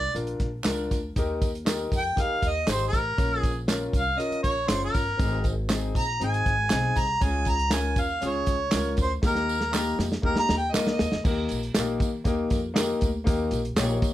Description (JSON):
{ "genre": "uptempo 1960s-style soul", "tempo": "119 BPM", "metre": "4/4", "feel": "straight", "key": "unclear", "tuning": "A4 = 441 Hz", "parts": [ { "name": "mellow harmonica", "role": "melody", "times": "0.0-11.2 s", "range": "Bb4 to Bb5", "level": "-27 LUFS", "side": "right 1 dB", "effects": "none" }, { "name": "upright bass", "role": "bass", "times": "0.0-14.1 s", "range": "Gb1 to Eb3", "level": "-31 LUFS", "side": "equal", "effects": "tube saturation" }, { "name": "warm concert grand piano", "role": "accompaniment", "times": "0.1-14.1 s", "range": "Bb3 to Db5", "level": "-30 LUFS", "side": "left 3 dB", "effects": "none" }, { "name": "warm soul drum kit", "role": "drums", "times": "0.2-14.1 s", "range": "crash cymbal, hi-hat, kick drum, snare drum", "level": "-27 LUFS", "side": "equal", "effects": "none" }, { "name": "tambourine and handclaps", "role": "percussion", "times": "0.2-14.1 s", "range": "none", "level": "-36 LUFS", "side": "right 4 dB", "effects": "none" } ], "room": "moderate small room reverb, RT60 0.5 s", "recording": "none", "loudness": "-23 LUFS", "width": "side -14 dB against mid", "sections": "0.0-11.3 A section; 11.3-14.1 B section", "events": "harmonica solo 0.0-11.3; drum fill 9.2-11.3", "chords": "0.0 Bb; 1.2 Eb; 3.2 Bbm; 5.2 Ab; 7.2 Db; 9.2 Eb" }